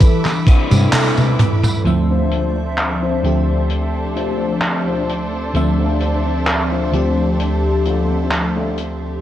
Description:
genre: vaporwave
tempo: 65 BPM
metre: 4/4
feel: straight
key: unclear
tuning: A4 = 441 Hz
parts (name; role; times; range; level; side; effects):
- FM electric piano with soft pad layer; accompaniment; 0.0-9.2 s; D2 to E5; -18 LUFS; equal; phaser, wide subtle chorus
- rich studio string section; sustained chords; 0.0-9.2 s; D4 to D6; -26 LUFS; right 1 dB; low-pass filter
- electric guitar at the edge of break-up; riff; 0.0-9.1 s; C4 to D5; -25 LUFS; left 4 dB; wide subtle chorus, vintage 12-bit sampler grit, low-pass filter, tape echo
- electronic kick drum; drums; 0.0-0.7 s; none; -10 LUFS; equal; vintage 12-bit sampler grit
- natural country drum kit; drums; 0.0-9.0 s; handclaps, hi-hat, tambourine, toms; -18 LUFS; equal; low-pass filter on hats, vintage 12-bit sampler grit, low-pass filter on toms, low-pass filter on snare, low-pass filter on perc, low-pass filter on room
- fretless electric bass; bass; 0.7-0.9 s; G2; -14 LUFS; equal; none
room: light reverb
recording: none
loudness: -15 LUFS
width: side -12 dB against mid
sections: 0.0-1.9 A section; 1.9-9.2 B section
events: drum fill 0.0-1.9; break 0.9-1.9; band accent 0.9-1.4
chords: 0.0 Cmaj9; 1.9 Dm7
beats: 0.01 0.93 | 1.86 2.78 3.70 4.62 | 5.55 6.47 7.39 8.32

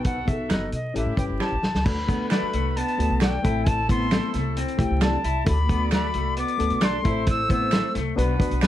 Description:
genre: uptempo 1960s-style soul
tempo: 133 BPM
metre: 4/4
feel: straight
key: unclear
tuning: A4 = 442 Hz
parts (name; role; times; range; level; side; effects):
- silver concert flute; melody; 0.0-7.9 s; D#5 to E6; -28 LUFS; left 2 dB; none
- mellow horn section; second line; 0.0-8.7 s; C4 to D5; -35 LUFS; right 2 dB; none
- barky reed electric piano; accompaniment; 0.0-8.7 s; A3 to C5; -29 LUFS; left 3 dB; overdrive, spring reverb
- upright bass; bass; 0.0-8.7 s; F#1 to B2; -27 LUFS; equal; none
- warm soul drum kit; drums; 0.0-8.7 s; crash cymbal, hi-hat, kick drum, snare drum; -24 LUFS; equal; none
- clean electric guitar; stabs; 0.5-8.7 s; C4 to D5; -34 LUFS; right 3 dB; tape echo
- finger snaps; percussion; 0.5-8.7 s; none; -35 LUFS; right 7 dB; none
- electric guitar through a small old amp; riff; 2.1-8.7 s; A3 to E4; -31 LUFS; left 2 dB; warbly pitch drift
room: moderate club reverb, RT60 0.6 s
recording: dark, warm production, vinyl crackle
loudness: -21 LUFS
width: side -12 dB against mid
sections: 0.0-1.9 A section; 1.9-8.7 B section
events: drum fill 1.4-1.9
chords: 0.0 B; 1.0 A7; 1.9 D; 3.4 Am; 5.5 D; 7.0 Am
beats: | 0.05 0.50 0.95 1.41 | 1.86 2.31 2.76 3.21 | 3.66 4.12 4.57 5.02 | 5.47 5.92 6.37 6.82 | 7.27 7.72 8.17 8.62

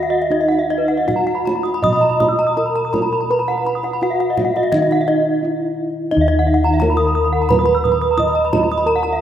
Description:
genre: Balinese gamelan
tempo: 78-87 BPM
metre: 4/4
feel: straight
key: Eb pelog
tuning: A4 = 440 Hz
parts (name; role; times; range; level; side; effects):
- gamelan-type bronze metallophone; melody; 0.0-9.2 s; Eb4 to Eb5; -18 LUFS; right 2 dB; none
- gamelan-type bronze metallophone; arpeggios; 0.0-9.1 s; Eb5 to Eb6; -21 LUFS; left 3 dB; slapback echo
- gamelan-type bossed gongs; bass; 0.0-9.2 s; Eb2 to Cb5-20c; -22 LUFS; left 1 dB; none
- gamelan-type bronze metallophone; arpeggios; 0.1-9.2 s; Cb5-20c to Fb6+20c; -23 LUFS; right 4 dB; none
- kendang; percussion; 0.5-9.1 s; none; -25 LUFS; right 2 dB; none
room: wet lush hall reverb, RT60 2.5 s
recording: rough home demo mix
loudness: -14 LUFS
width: side -10 dB against mid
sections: 0.0-6.1 A section; 6.1-9.2 B section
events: break 5.1-6.1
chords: none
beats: | 0.31 1.07 1.82 2.57 | 3.30 4.02 4.73 5.43 | 6.12 6.81 7.50 8.18 | 8.87

